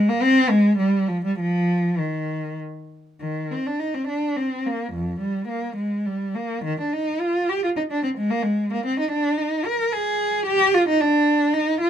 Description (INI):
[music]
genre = classical, baroque-style suite movement for unaccompanied cello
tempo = 92-113 BPM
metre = 3/4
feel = rubato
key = Eb major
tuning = A4 = 440 Hz
[part]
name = rich cello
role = solo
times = 0.0-11.9 s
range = F2 to Bb4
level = -20 LUFS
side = equal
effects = none
[sound]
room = light reverb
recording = close, detailed microphones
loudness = -20 LUFS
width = side -9 dB against mid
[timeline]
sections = 0.0-3.2 A section; 3.2-11.9 B section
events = none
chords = none